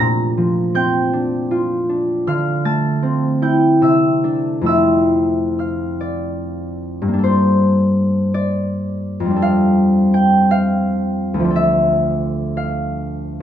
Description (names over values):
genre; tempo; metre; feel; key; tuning
classical, solo harp piece; 66-88 BPM; 3/4; rubato; F major; A4 = 440 Hz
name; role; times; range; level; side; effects
concert harp; solo; 0.0-13.4 s; D2 to Bb6; -15 LUFS; equal; none
room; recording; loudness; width
light reverb; dark, warm production; -15 LUFS; side -10 dB against mid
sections
0.0-7.2 A section; 7.2-13.4 B section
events
none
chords
0.0 Bb69; 2.3 Dm11; 3.8 C69; 4.7 Fmaj7; 7.2 Gm9; 9.4 F69; 11.5 Dmadd9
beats
| 0.00 0.75 1.51 | 2.27 3.03 3.82 | 4.67 5.57 6.43 | 7.24 7.97 8.70 | 9.41 10.14 10.86 | 11.54 12.22 12.91